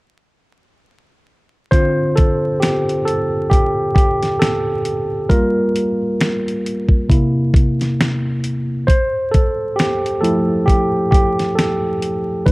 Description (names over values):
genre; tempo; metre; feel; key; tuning
lo-fi hip hop; 67 BPM; 4/4; swing 58% on 16ths; D minor; A4 = 441 Hz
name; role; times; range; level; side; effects
mellow tine electric piano; accompaniment; 1.7-12.5 s; C3 to C5; -16 LUFS; equal; cassette tape
dusty soul sampler-style drum kit; drums; 1.7-12.5 s; finger snaps, hi-hat, kick drum, snare drum; -15 LUFS; equal; none
room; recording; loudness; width
light reverb; vinyl crackle; -14 LUFS; side -23 dB against mid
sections
1.7-12.5 A section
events
tine electric piano solo 1.7-12.5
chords
1.7 Dm7; 5.3 Gm7; 7.1 C7; 8.9 Fmaj7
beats
| 1.72 2.61 3.51 4.41 | 5.30 6.20 7.09 7.99 | 8.88 9.78 10.67 11.57 | 12.46